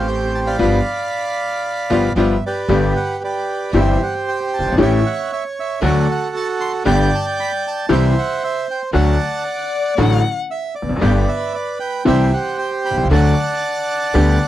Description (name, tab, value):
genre	tango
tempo	115 BPM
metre	4/4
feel	rubato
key	G major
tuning	A4 = 438 Hz
part	bandoneon	melody	0.0-14.5 s	F#4 to C6	-20 LUFS	right 3 dB	none
part	bright baby grand piano	accompaniment	0.0-14.4 s	F#1 to G4	-17 LUFS	left 3 dB	none
part	clear symphonic string section	stabs	0.0-14.4 s	A3 to A4	-26 LUFS	right 4 dB	none
part	upright bass	bass	0.0-14.4 s	E1 to D2	-19 LUFS	right 1 dB	none
part	warm violin	second line	9.5-10.4 s	D5 to F#5	-22 LUFS	left 7 dB	none
room	little or no reverb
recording	dry, close 1970s-style studio recording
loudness	-16 LUFS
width	side -13 dB against mid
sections	0.0-2.7 A section; 2.7-14.5 B section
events	band accent 0.6-2.7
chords	0.0 Am7; 0.6 G7; 2.7 G; 3.7 C/G; 4.8 A7; 5.8 D; 6.9 G; 7.9 C; 8.9 D; 11.0 G; 12.1 C; 13.1 D